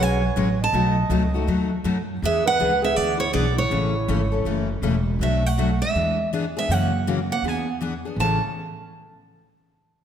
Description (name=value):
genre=acoustic string swing (jazz manouche)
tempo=161 BPM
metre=4/4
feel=swing 63% on 8ths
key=A major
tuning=A4 = 440 Hz
part: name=picked steel-string acoustic guitar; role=melody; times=0.0-8.4 s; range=C#5 to A5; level=-25 LUFS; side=right 3 dB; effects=none
part: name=breathy clarinet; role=second line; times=0.0-8.4 s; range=G#3 to D#5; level=-28 LUFS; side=right 5 dB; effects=none
part: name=picked steel-string acoustic guitar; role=accompaniment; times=0.0-8.4 s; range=A2 to C#5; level=-25 LUFS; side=left 4 dB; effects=none
part: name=upright bass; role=bass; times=0.0-8.4 s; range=E1 to F#2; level=-25 LUFS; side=equal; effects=none
room=wet scoring stage reverb, RT60 1.8 s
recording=none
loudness=-20 LUFS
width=side -9 dB against mid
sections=0.0-5.2 A section; 5.2-8.2 B section; 8.2-9.7 C section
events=none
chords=0.0 F#sus2; 0.7 B7; 2.2 E7; 3.7 A; 5.2 Bm7; 5.9 E7; 6.7 F#7; 7.4 E7; 8.2 Amaj7